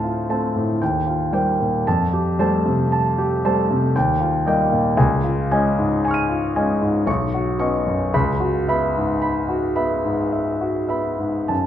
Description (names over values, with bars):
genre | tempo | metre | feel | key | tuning
classical, impressionist solo piano | 48-59 BPM | 3/4 | rubato | unclear | A4 = 437 Hz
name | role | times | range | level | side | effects
clear grand piano | solo | 0.0-11.7 s | B1 to D#7 | -18 LUFS | equal | none
room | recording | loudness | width
wet recital hall reverb, RT60 1.7 s | none | -18 LUFS | side -10 dB against mid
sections
0.0-11.7 A section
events
none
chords
0.0 Dm7; 0.8 Eb69; 1.9 Fadd9; 3.9 Ebadd9; 5.0 C#add9; 7.1 Badd9; 8.1 C#m7